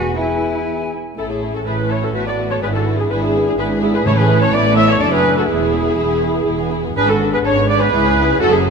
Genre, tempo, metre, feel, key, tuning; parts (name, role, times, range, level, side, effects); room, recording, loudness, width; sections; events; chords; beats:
quick classical-period movement for symphony orchestra; 124 BPM; 3/4; rubato; A major; A4 = 437 Hz
bright silver concert flute; second line; 0.0-0.9 s; G#5; -27 LUFS; left 3 dB
warm clarinet; second line; 0.0-8.6 s; G#4 to E5; -23 LUFS; left 1 dB
dark French horn section; sustained chords; 0.0-8.7 s; F#3 to G#4; -23 LUFS; left 3 dB
muted studio cello section; bass; 0.0-8.7 s; C#2 to F#4; -22 LUFS; right 3 dB
muted studio double bass section; bass; 0.0-8.7 s; E1 to C#2; -23 LUFS; right 4 dB
muted studio violin section; melody; 1.2-8.6 s; E4 to C#5; -25 LUFS; left 4 dB
muted studio violin section; second line; 1.2-8.7 s; A3 to A4; -25 LUFS; left 5 dB
muted studio viola section; accompaniment; 1.2-8.7 s; G#4 to E5; -18 LUFS; right 2 dB
timpani; percussion; 4.1-4.7 s; A2; -22 LUFS; right 1 dB
wet concert hall reverb, RT60 2.3 s; -14 LUFS; side -5 dB against mid
0.0-1.2 A section; 1.2-8.7 B section
0.0 E; 1.2 A; 2.2 Bm7/A; 2.6 E7/G#; 4.1 A; 5.0 D/F#; 5.5 E; 7.0 G#dim; 7.9 C#m7
0.17 0.68 | 1.18 1.67 2.15 | 2.63 3.11 3.59 | 4.06 4.53 5.01 | 5.50 5.99 6.48 | 6.97 7.45 7.93 | 8.40